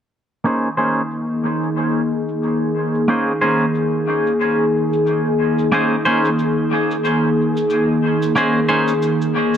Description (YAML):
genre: ambient dub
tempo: 91 BPM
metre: 4/4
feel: swing 58% on 16ths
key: Bb minor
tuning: A4 = 441 Hz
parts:
  - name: clean electric guitar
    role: stabs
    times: 0.4-8.9 s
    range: Bb3 to C5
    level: -20 LUFS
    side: right 1 dB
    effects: low-pass filter, dub echo
  - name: warbly tape-like pad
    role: sustained chords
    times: 0.8-9.6 s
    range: Eb3 to Ab4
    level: -17 LUFS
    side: equal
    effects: chorus, built-in reverb, vintage 12-bit sampler grit
  - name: cabasa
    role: drums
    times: 0.5-9.6 s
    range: none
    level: -41 LUFS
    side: right 2 dB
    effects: low-pass filter on perc, low-pass filter on room, dub echo
room: moderate spring reverb, RT60 2.9 s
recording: none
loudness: -16 LUFS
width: side -9 dB against mid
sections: 0.5-9.6 A section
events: filter sweep on clean electric guitar 0.5-9.6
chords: 0.5 Bbm11